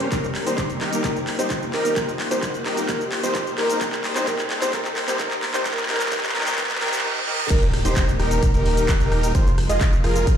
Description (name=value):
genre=EDM, festival progressive house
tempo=130 BPM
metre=4/4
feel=straight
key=unclear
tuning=A4 = 439 Hz
part: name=clear symphonic string section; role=sustained chords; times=0.0-10.4 s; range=C3 to C5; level=-33 LUFS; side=equal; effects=none
part: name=wide unison lead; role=arpeggios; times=0.0-10.3 s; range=Bb4 to Eb5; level=-27 LUFS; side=equal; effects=sidechain pumping, dub echo
part: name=dense compressed supersaw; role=riff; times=0.0-10.3 s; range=Eb4 to Eb5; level=-27 LUFS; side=right 1 dB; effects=sidechain pumping, low-pass filter, dub echo
part: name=house drum kit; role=drums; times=0.0-10.4 s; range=crash cymbal, handclaps, hi-hat, rim click, shaker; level=-26 LUFS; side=equal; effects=none
part: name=riser, reverse cymbal and impact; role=sound effects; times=0.2-9.3 s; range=none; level=-32 LUFS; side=right 1 dB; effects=none
part: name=dark concert grand piano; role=accompaniment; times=0.1-7.0 s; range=G3 to G4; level=-33 LUFS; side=left 4 dB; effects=sidechain pumping, dub echo
part: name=electronic kick drum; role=drums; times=0.1-10.4 s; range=none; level=-22 LUFS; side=equal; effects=none
part: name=saturated sub bass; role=bass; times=7.5-10.4 s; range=Eb1 to F1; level=-24 LUFS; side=equal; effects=sidechain pumping
room=light reverb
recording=played on a big sound system in a bare room, stone room reverb, high-pass filter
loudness=-19 LUFS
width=side -9 dB against mid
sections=0.0-7.5 A section; 7.5-10.4 B section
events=build-up 0.0-7.5; drum fill 0.0-7.0; filter sweep on supersaw synth 0.0-7.5; filter sweep on analog synth lead 0.0-7.5; filter sweep 0.0-7.5; reverse cymbal 6.6-7.5; drop 7.5-10.4; impact 7.5-9.3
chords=0.1 Eb; 2.0 F5; 3.8 Eb6; 5.7 Gdim; 7.5 Eb; 9.3 Fm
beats=| 0.12 0.58 1.04 1.50 | 1.96 2.43 2.89 3.35 | 3.81 4.27 4.73 5.20 | 5.66 6.12 6.58 7.04 | 7.50 7.96 8.43 8.89 | 9.35 9.81 10.27